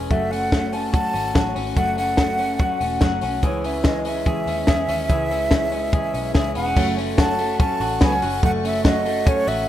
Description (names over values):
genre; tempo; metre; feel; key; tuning
jangly indie pop; 144 BPM; 4/4; straight; F# minor; A4 = 440 Hz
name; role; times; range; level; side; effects
picked steel-string acoustic guitar; accompaniment; 0.0-9.7 s; C#3 to G#4; -31 LUFS; right 6 dB; none
electric guitar through a small old amp; arpeggios; 0.0-9.7 s; E3 to G#4; -25 LUFS; left 3 dB; none
vintage muted picked electric bass; bass; 0.0-9.7 s; E1 to E2; -30 LUFS; equal; none
breathy mellow silver concert flute; melody; 0.1-9.7 s; C#5 to A5; -24 LUFS; right 1 dB; none
compact cocktail drum kit; drums; 0.1-9.6 s; crash cymbal, hi-hat, kick drum, snare drum; -21 LUFS; equal; none
warbly lo-fi synth keys; accompaniment; 6.8-9.7 s; C#4 to C#5; -34 LUFS; right 5 dB; none
warm studio string section; sustained chords; 6.8-9.7 s; A4 to C#6; -39 LUFS; equal; none
room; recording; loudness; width
light reverb, small room reverb; rough home demo mix; -18 LUFS; side -12 dB against mid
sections
0.0-6.8 A section; 6.8-9.7 B section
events
none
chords
0.1 F#m; 3.4 C#m; 6.8 F#m